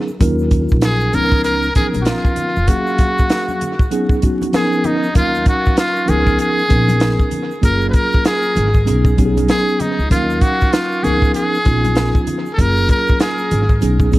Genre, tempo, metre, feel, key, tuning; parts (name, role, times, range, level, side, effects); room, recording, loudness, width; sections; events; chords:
hip hop, jazz-hop; 97 BPM; 4/4; swing 59% on 16ths; F# major; A4 = 443 Hz
mellow tine electric piano; accompaniment; 0.0-14.2 s; E3 to E#5; -19 LUFS; equal; medium stereo tremolo, tape echo
egg shaker and congas; percussion; 0.1-14.2 s; -31 LUFS; left 2 dB; tape echo
upright bass; bass; 0.2-14.2 s; E#1 to D#2; -18 LUFS; equal
compact cocktail drum kit; drums; 0.2-14.2 s; hi-hat, kick drum, snare drum; -16 LUFS; equal
trumpet with metal mute; melody; 0.8-13.8 s; D#4 to B4; -19 LUFS; equal; tape echo
light reverb, studio reverb; echo-heavy mix, vinyl crackle; -13 LUFS; side -17 dB against mid
0.0-5.2 A section; 5.2-14.2 B section
0.2 D#m9; 1.1 C#13; 2.7 F#maj9; 3.9 B69; 4.5 C#13; 5.2 D#m9; 6.1 C#13; 7.6 F#maj9; 8.9 B69; 10.1 D#m9; 11.0 C#13; 12.6 F#maj9